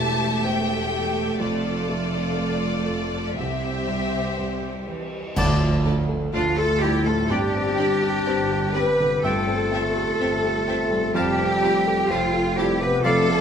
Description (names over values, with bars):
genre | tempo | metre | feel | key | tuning
cinematic, emotional film score for orchestra | 62 BPM | 4/4 | rubato | D dorian from 5.4 s | A4 = 439 Hz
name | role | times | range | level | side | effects
warm symphonic violin section | melody | 0.0-13.1 s | D5 to A5 | -31 LUFS | left 3 dB | none
rich symphonic violin section | second line | 0.0-13.1 s | G4 to F5 | -34 LUFS | left 3 dB | none
clear symphonic viola section | accompaniment | 0.0-13.1 s | A3 to G4 | -31 LUFS | right 2 dB | none
felt-muted upright piano | accompaniment | 0.0-13.4 s | C2 to E5 | -28 LUFS | equal | none
clear symphonic double bass section | bass | 0.0-13.4 s | E1 to D2 | -28 LUFS | right 2 dB | none
rich symphonic cello section | bass | 0.0-13.4 s | E2 to B4 | -26 LUFS | right 1 dB | none
cymbal swell, clash cymbals and concert bass drum | percussion | 1.4-7.3 s | none | -32 LUFS | equal | none
bright silver concert flute | second line | 5.4-13.4 s | F5 to A5 | -30 LUFS | left 1 dB | none
warm oboe | second line | 5.4-13.4 s | D5 to F5 | -32 LUFS | left 1 dB | none
timpani | percussion | 5.4-6.8 s | D3 | -30 LUFS | left 1 dB | none
mellow French horn section | sustained chords | 6.3-13.4 s | F3 to B4 | -27 LUFS | left 4 dB | none
mellow clarinet | second line | 6.4-13.4 s | C4 to G4 | -27 LUFS | left 1 dB | none
room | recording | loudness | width
wet recital hall reverb, RT60 1.7 s | none | -20 LUFS | side -8 dB against mid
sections
0.0-5.4 A section; 5.4-13.4 B section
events
band accent 5.4-6.3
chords
0.0 Am7/E; 1.4 Dm/F; 3.4 C; 5.4 Dm; 7.3 Gsus4; 9.2 C/G; 11.2 Fadd9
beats
0.44 | 1.41 2.39 3.38 4.37 | 5.37 6.34 7.30 8.27 | 9.24 10.20 11.15 12.10 | 13.04